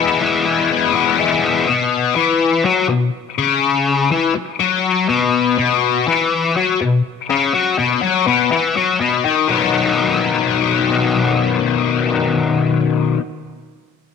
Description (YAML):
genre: rock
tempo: 123 BPM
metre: 4/4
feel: straight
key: B major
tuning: A4 = 438 Hz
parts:
  - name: overdriven electric guitar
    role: solo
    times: 0.0-13.2 s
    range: B2 to E4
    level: -14 LUFS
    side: left 6 dB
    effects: rotary speaker
room: moderate echo chamber reverb, RT60 1.7 s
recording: none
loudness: -14 LUFS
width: side -5 dB against mid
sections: 0.0-1.7 A section; 1.7-9.5 B section; 9.5-13.4 C section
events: none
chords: 0.0 E; 1.7 B5; 9.5 B